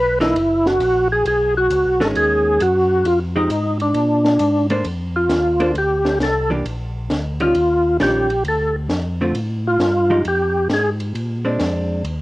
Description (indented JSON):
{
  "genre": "soul jazz organ trio",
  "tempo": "134 BPM",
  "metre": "4/4",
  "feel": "swing 67% on 8ths",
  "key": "Bb major from 4.9 s",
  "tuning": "A4 = 440 Hz",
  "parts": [
    { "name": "overdriven tonewheel organ", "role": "melody", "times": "0.0-10.9 s", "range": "D4 to Cb5", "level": "-16 LUFS", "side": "equal", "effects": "slow rotary speaker, chorus vibrato, cassette tape, plate reverb" },
    { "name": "tonewheel organ", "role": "bass", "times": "0.0-12.2 s", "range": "Gb1 to Bb2", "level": "-23 LUFS", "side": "equal", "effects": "slow rotary speaker" },
    { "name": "hollow-body jazz guitar", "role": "accompaniment", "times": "0.2-12.0 s", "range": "D3 to C5", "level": "-22 LUFS", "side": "right 1 dB", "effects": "plate reverb" },
    { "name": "compact cocktail drum kit", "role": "drums", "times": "0.2-12.2 s", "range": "hi-hat, ride cymbal, snare drum", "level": "-28 LUFS", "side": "equal", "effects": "cassette tape" }
  ],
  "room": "moderate booth ambience, RT60 0.2 s",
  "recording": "home recording on cassette",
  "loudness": "-16 LUFS",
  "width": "side -18 dB against mid",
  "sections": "0.0-4.9 A section; 4.9-12.2 B section",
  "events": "tonewheel organ solo 4.9-12.2",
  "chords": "0.4 Gb; 1.3 B69; 3.1 Fm9; 4.0 Bb9; 4.9 Bbmaj9; 6.7 Bbadd11; 7.5 Eb9; 8.4 Dm; 10.2 Fmadd9; 11.1 Bb9",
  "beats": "0.36 0.81 | 1.25 1.70 2.15 2.60 | 3.05 3.50 3.95 4.40 | 4.85 5.30 5.75 6.20 | 6.65 7.10 7.55 8.00 | 8.45 8.90 9.35 9.80 | 10.25 10.70 11.15 11.60 | 12.04"
}